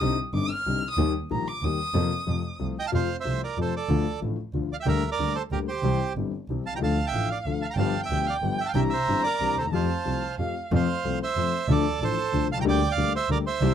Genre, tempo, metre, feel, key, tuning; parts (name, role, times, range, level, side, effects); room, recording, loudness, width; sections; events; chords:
tango; 185 BPM; 3/4; rubato; F major; A4 = 440 Hz
warm violin; second line; 0.0-2.6, 6.8-10.7 s; F5 to F6; -30 LUFS; right 1 dB
warm concert grand piano; accompaniment; 0.0-13.7 s; G1 to A4; -28 LUFS; left 7 dB
rich double bass; bass; 0.0-13.7 s; G1 to F2; -29 LUFS; right 3 dB
bandoneon; melody; 2.8-13.7 s; G4 to Bb5; -28 LUFS; right 7 dB
light reverb; dry, close 1970s-style studio recording; -24 LUFS; side -9 dB against mid
0.0-2.9 A section; 2.9-10.7 B section; 10.7-13.7 C section
violin solo 0.0-2.9
0.0 Cmadd9; 1.0 Eb; 1.9 Fsus4; 2.3 F; 3.9 Dm; 4.9 Gm/D; 5.8 C; 6.8 Dm; 7.8 G7; 8.8 Cadd9; 9.7 Fadd9; 10.7 F; 11.7 Dm; 12.7 Gm/D